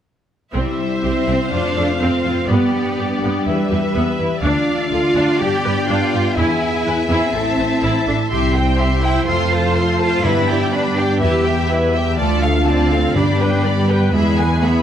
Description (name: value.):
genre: cinematic.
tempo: 124 BPM.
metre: 4/4.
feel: straight.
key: C major.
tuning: A4 = 440 Hz.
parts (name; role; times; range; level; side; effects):
rich symphonic violin section; melody; 0.5-14.8 s; D5 to C6; -25 LUFS; left 3 dB; none.
rich symphonic violin section; second line; 0.5-14.8 s; G4 to G#5; -24 LUFS; left 2 dB; none.
rich symphonic viola section; accompaniment; 0.5-14.8 s; B3 to C5; -24 LUFS; right 1 dB; none.
dark French horn section; sustained chords; 0.5-14.8 s; G3 to G#4; -23 LUFS; left 2 dB; none.
concert harp; arpeggios; 0.5-14.8 s; E2 to D6; -26 LUFS; left 5 dB; none.
rich symphonic cello section; bass; 0.5-14.8 s; G3 to G4; -21 LUFS; right 2 dB; none.
rich symphonic double bass section; bass; 0.5-14.8 s; A1 to G2; -21 LUFS; right 2 dB; none.
timpani; percussion; 10.2-13.8 s; G2; -26 LUFS; equal; none.
room: moderate scoring stage reverb, RT60 1.8 s.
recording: none.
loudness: -15 LUFS.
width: side -9 dB against mid.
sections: 0.5-14.8 A section.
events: none.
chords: 0.5 C; 1.5 F; 2.5 G; 3.5 Em; 4.4 Dm; 5.4 G; 6.4 E; 7.3 Am; 8.3 C; 9.3 F; 10.2 G; 11.2 Em; 12.2 Dm; 13.2 G; 14.1 E.